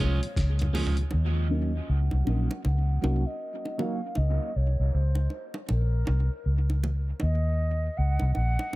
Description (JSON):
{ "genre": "dub reggae", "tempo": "79 BPM", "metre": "4/4", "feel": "swing 61% on 16ths", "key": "Eb dorian", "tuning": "A4 = 442 Hz", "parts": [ { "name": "mellow hollow concert flute", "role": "melody", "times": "0.0-8.8 s", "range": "Bb4 to Gb5", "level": "-37 LUFS", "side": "equal", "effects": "low-pass filter, dub echo" }, { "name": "electric guitar at the edge of break-up", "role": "accompaniment", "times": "0.0-4.0 s", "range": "F3 to Gb4", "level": "-35 LUFS", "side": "right 4 dB", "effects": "low-pass filter, dub echo" }, { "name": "mellow tonewheel organ", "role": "accompaniment", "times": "0.0-1.0 s", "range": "Bb2 to Ab4", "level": "-41 LUFS", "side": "left 2 dB", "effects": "none" }, { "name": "vintage muted fingered electric bass", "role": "bass", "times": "0.0-8.6 s", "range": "Bb1 to Eb2", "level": "-24 LUFS", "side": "equal", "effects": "none" }, { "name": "dusty soul sampler-style drum kit", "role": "drums", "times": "0.2-1.1 s", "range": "hi-hat, kick drum, snare drum, toms", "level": "-30 LUFS", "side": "equal", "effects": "none" }, { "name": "bongos", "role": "percussion", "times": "0.6-8.8 s", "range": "none", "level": "-38 LUFS", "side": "right 2 dB", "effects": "dub echo" }, { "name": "dark upright piano", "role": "stabs", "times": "1.5-4.0 s", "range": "Db4 to Bb4", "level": "-37 LUFS", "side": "left 4 dB", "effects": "low-pass filter, dub echo" } ], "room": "little or no reverb", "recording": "echo-heavy mix", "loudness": "-24 LUFS", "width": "side -19 dB against mid", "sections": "0.0-1.1 A section; 1.1-8.8 B section", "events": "break 0.0-1.1; drum fill 0.4-1.1; filter sweep 1.1-8.8", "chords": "0.0 Bbm7; 1.1 Ebm7; 4.2 Cm; 5.7 Bbm; 7.2 Ebm7", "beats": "0.37 | 1.13 1.89 2.65 3.41 | 4.17 4.93 5.69 6.45 | 7.21 7.96 8.72" }